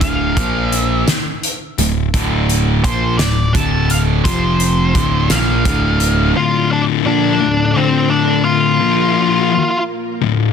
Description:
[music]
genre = quiet-loud alternative rock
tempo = 57 BPM (dotted quarters)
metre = 6/8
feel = straight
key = D minor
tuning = A4 = 438 Hz
[part]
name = octave-fuzz lead guitar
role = melody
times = 0.0-9.8 s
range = C4 to A5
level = -18 LUFS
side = equal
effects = distortion
[part]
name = distorted electric guitar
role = riff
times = 0.0-6.4 s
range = D2 to Bb3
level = -20 LUFS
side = right 15 dB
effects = distortion
[part]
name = thick fuzz guitar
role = riff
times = 0.0-10.5 s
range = D2 to Bb3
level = -17 LUFS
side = left 10 dB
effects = distortion
[part]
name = picked electric bass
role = bass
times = 0.0-6.3 s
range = D1 to Bb1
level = -18 LUFS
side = right 1 dB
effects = none
[part]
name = loose indie drum kit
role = drums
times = 0.0-6.2 s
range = hi-hat, kick drum, snare drum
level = -19 LUFS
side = equal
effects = none
[part]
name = string machine, cellos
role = sustained chords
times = 6.3-10.5 s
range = D3 to Bb4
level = -23 LUFS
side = equal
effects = ensemble chorus
[sound]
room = light reverb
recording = dense, heavily limited modern master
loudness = -13 LUFS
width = side -7 dB against mid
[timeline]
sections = 0.0-6.4 A section; 6.4-10.5 B section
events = lead electric guitar solo 0.0-6.4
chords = 0.4 Bb5; 1.8 Dm; 4.3 F5; 5.0 Dm; 8.8 Bb5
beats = | 0.02 1.08 | 2.14 3.20 | 4.25 5.31 | 6.36 7.42 | 8.47 9.52

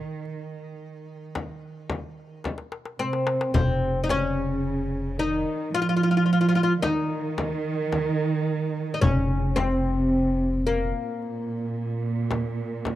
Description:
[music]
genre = Turkish makam ensemble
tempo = 110 BPM (eighths)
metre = 10/8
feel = straight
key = unclear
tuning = A4 = 440 Hz
[part]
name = oud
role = melody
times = 0.0-13.0 s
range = Bb3 to F4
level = -26 LUFS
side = left 2 dB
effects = none
[part]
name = dark chamber cello section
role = second line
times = 0.0-13.0 s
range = Bb2 to F3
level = -27 LUFS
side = right 3 dB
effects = none
[part]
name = darbuka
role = percussion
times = 0.3-13.0 s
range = none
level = -30 LUFS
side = left 3 dB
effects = none
[part]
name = frame drum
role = percussion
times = 1.4-13.0 s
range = none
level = -29 LUFS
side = left 2 dB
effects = none
[part]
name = upright bass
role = bass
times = 3.5-10.9 s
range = F1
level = -28 LUFS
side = left 1 dB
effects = none
[sound]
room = small room ambience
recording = dry, close 1970s-style studio recording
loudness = -23 LUFS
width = side -14 dB against mid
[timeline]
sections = 0.0-3.6 A section; 3.6-13.0 B section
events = drum fill 2.5-3.6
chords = none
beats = 0.27 0.81 1.36 1.91 2.46 3.00 | 3.55 4.10 4.65 5.20 5.74 6.29 6.84 7.39 7.93 8.48 | 9.03 9.58 10.12 10.67 11.22 11.77 12.31 12.86

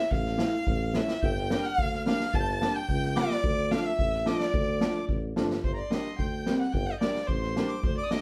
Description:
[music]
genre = klezmer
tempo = 109 BPM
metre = 2/4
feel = straight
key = D harmonic minor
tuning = A4 = 440 Hz
[part]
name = warm violin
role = melody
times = 0.0-8.2 s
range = C5 to A5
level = -34 LUFS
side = equal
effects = none
[part]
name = warm tuba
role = bass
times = 0.1-8.0 s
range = G1 to D2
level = -35 LUFS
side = equal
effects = none
[part]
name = street-band drum kit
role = drums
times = 0.1-8.2 s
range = kick drum, snare drum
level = -33 LUFS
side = equal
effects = none
[part]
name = warm upright piano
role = accompaniment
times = 0.4-8.2 s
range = E3 to F4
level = -33 LUFS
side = equal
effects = none
[part]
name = accordion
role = second line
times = 1.2-8.2 s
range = Bb5 to A6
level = -41 LUFS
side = equal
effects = none
[sound]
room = wet studio reverb, RT60 0.5 s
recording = heard from further back in the room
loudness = -28 LUFS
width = mono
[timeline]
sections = 0.0-5.6 A section; 5.6-8.2 B section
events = none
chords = 0.0 A5; 1.2 Gm; 3.4 Dm; 5.6 Gm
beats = | 0.10 0.66 | 1.22 1.77 | 2.33 2.88 | 3.44 3.99 | 4.54 5.09 | 5.64 6.19 | 6.74 7.29 | 7.84

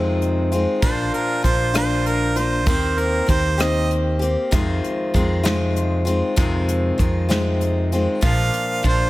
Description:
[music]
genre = folk rock and heartland rock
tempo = 65 BPM (dotted quarters)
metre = 6/8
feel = straight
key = F dorian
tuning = A4 = 440 Hz
[part]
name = picked steel-string acoustic guitar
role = accompaniment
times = 0.0-9.1 s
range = F2 to G4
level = -22 LUFS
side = left 2 dB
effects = none
[part]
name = picked electric bass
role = bass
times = 0.0-9.1 s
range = Bb1 to F2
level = -22 LUFS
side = equal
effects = none
[part]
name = soft brush drum kit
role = drums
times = 0.2-9.0 s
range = hi-hat, kick drum, rim click, snare drum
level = -22 LUFS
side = equal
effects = none
[part]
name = clear harmonica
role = second line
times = 0.8-3.9, 8.2-9.1 s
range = Bb4 to F5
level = -23 LUFS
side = right 3 dB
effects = none
[sound]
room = light reverb, studio reverb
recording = none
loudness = -17 LUFS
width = side -17 dB against mid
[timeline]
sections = 0.0-9.1 A section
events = none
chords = 0.0 Fm7; 0.8 Bb; 2.7 Eb6; 4.5 Fm7; 8.2 Bb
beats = | 0.83 1.75 | 2.67 3.60 | 4.53 5.45 | 6.38 7.30 | 8.23

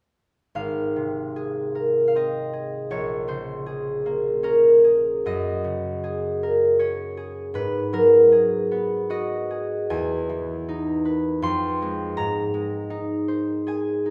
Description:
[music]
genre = classical, solo harp piece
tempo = 77 BPM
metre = 3/4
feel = uneven beats, rubato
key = Ab major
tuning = A4 = 439 Hz
[part]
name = concert harp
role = solo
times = 0.6-14.1 s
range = Ab1 to C6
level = -23 LUFS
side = equal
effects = none
[sound]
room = wet recital hall reverb, RT60 1.6 s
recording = recorded in a church or concert hall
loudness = -23 LUFS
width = mono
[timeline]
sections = 0.6-14.1 A section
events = none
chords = 0.6 Abadd9; 2.9 Bbm7; 5.3 Gbadd9; 7.5 Abm7; 9.9 Emaj7; 11.4 Fm7; 12.2 Abadd9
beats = | 0.55 1.36 2.15 | 2.92 3.68 4.45 | 5.26 6.03 6.79 | 7.54 8.30 9.10 | 9.91 10.68 11.43 | 12.18 12.91 13.67

